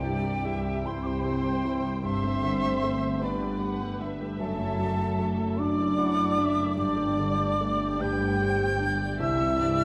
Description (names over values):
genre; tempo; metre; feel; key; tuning
cinematic, emotional film score for orchestra; 50 BPM (dotted quarters); 6/8; rubato; G major; A4 = 444 Hz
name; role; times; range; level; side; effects
muted symphonic violin section; melody; 0.0-9.8 s; B4 to G5; -42 LUFS; equal; none
bright wooden flute; second line; 0.0-9.8 s; G5 to G6; -34 LUFS; equal; none
muted studio violin section; second line; 0.0-9.8 s; G4 to G5; -39 LUFS; equal; none
muted chamber viola section; accompaniment; 0.0-9.8 s; E3 to G4; -41 LUFS; equal; none
warm concert grand piano; accompaniment; 0.0-9.8 s; C2 to G4; -35 LUFS; equal; none
mellow French horn section; sustained chords; 0.0-9.8 s; G3 to G4; -33 LUFS; equal; none
muted studio double bass section; bass; 0.0-9.8 s; F#1 to C2; -36 LUFS; equal; none
muted symphonic cello section; bass; 0.0-9.8 s; F#2 to C3; -37 LUFS; equal; none
room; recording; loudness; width
wet scoring stage reverb, RT60 1.6 s; dark, warm production; -27 LUFS; mono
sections
0.0-9.8 A section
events
none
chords
0.0 C; 2.0 Gsus2; 4.4 Dadd9/F#; 6.8 Gsus2; 9.2 C